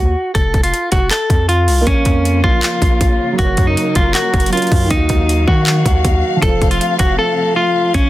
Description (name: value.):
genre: hip hop, trap.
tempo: 158 BPM.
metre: 4/4.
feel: half-time.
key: unclear.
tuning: A4 = 440 Hz.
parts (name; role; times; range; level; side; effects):
clean electric guitar; melody; 0.0-8.1 s; Db4 to A4; -16 LUFS; equal; tape echo.
long sustained 808-style bass; bass; 0.0-8.1 s; F1 to Eb3; -17 LUFS; equal; none.
trap drum kit; drums; 0.3-8.0 s; handclaps, hi-hat, kick drum; -16 LUFS; equal; none.
dark concert grand piano; accompaniment; 1.8-8.0 s; Eb3 to F5; -22 LUFS; right 4 dB; none.
warm symphonic string section; sustained chords; 1.9-8.1 s; C3 to F5; -23 LUFS; left 4 dB; none.
room: digital ambience.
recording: dense, heavily limited modern master.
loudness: -12 LUFS.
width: side -15 dB against mid.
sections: 0.0-8.1 A section.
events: drums muted 7.2-7.9.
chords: 0.3 F; 1.9 Bbm; 3.4 Gb; 4.9 Ebmadd9; 6.4 F.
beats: | 0.35 0.73 1.11 1.49 | 1.87 2.25 2.63 3.01 | 3.39 3.77 4.15 4.53 | 4.91 5.29 5.67 6.05 | 6.42 6.80 7.18 7.57 | 7.94.